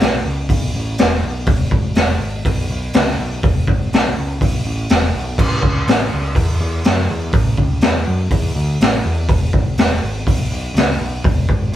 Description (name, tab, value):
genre	blues rock power trio and southern rock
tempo	123 BPM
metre	4/4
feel	straight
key	E mixolydian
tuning	A4 = 440 Hz
part	growling picked electric bass	bass	0.0-11.8 s	E1 to F#2	-20 LUFS	equal	overdrive
part	raw garage drum kit	drums	0.0-11.8 s	crash cymbal, hi-hat, kick drum, snare drum	-16 LUFS	equal	none
room	light reverb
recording	band playing live in one room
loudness	-14 LUFS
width	side -12 dB against mid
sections	0.0-11.8 A section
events	none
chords	none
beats	0.01 0.50 0.99 | 1.47 1.96 2.45 2.94 | 3.43 3.92 4.41 4.89 | 5.38 5.87 6.36 6.85 | 7.34 7.82 8.31 8.80 | 9.29 9.78 10.26 10.75 | 11.24 11.72